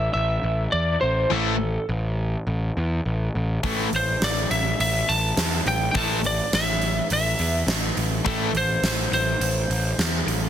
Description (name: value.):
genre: hard rock.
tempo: 104 BPM.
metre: 4/4.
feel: straight.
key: A minor.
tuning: A4 = 441 Hz.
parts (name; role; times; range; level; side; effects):
lightly driven lead guitar; melody; 0.0-10.5 s; A4 to A5; -25 LUFS; equal; plate reverb.
fuzz picked electric bass; bass; 0.0-10.5 s; A1 to E2; -25 LUFS; equal; overdrive.
sludgy distorted guitar; riff; 1.3-8.5 s; A2 to A3; -29 LUFS; right 9 dB; overdrive.
tight distorted guitar; riff; 1.3-8.5 s; A2 to A3; -26 LUFS; left 13 dB; distortion.
huge arena drum kit; drums; 3.6-10.4 s; hi-hat, kick drum, snare drum; -26 LUFS; right 1 dB; none.
room: light reverb.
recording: dense, heavily limited modern master.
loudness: -21 LUFS.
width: side -10 dB against mid.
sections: 0.0-10.5 A section.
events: none.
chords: 0.0 Am.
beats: 0.15 0.73 | 1.31 1.89 2.47 3.05 | 3.63 4.21 4.79 5.37 | 5.95 6.53 7.11 7.69 | 8.26 8.84 9.42 10.00.